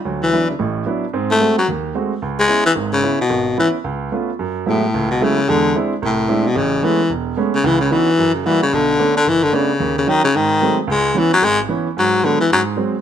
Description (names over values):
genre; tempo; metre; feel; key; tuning
jazz; 222 BPM; 4/4; swing 59% on 8ths; C# minor, F# minor from 4.4 s; A4 = 440 Hz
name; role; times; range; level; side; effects
clear baby grand piano; accompaniment; 0.0-12.9 s; E1 to F#4; -20 LUFS; right 5 dB; none
growling baritone saxophone; melody; 0.2-12.6 s; A2 to A3; -15 LUFS; left 3 dB; none
room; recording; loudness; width
light reverb; close, detailed microphones; -15 LUFS; side -9 dB against mid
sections
0.0-4.4 A section; 4.4-13.0 B section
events
none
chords
0.0 D69; 1.1 G#7b9; 2.2 C#m7; 3.8 C#aug7; 4.4 F#m11; 5.5 Eaug7; 6.6 Amaj9; 7.6 C#m11; 8.2 F#7b9; 8.7 Bm9; 9.8 D#m7; 10.3 G#7b9; 10.9 C#m7; 12.0 G#m7b5; 12.5 G#7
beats
| 0.05 0.32 0.59 0.86 | 1.13 1.41 1.68 1.95 | 2.22 2.49 2.76 3.03 | 3.31 3.58 3.85 4.12 | 4.39 4.66 4.93 5.20 | 5.47 5.74 6.01 6.28 | 6.55 6.83 7.10 7.37 | 7.64 7.91 8.18 8.45 | 8.72 8.99 9.26 9.53 | 9.80 10.07 10.34 10.61 | 10.88 11.15 11.42 11.69 | 11.96 12.23 12.50 12.77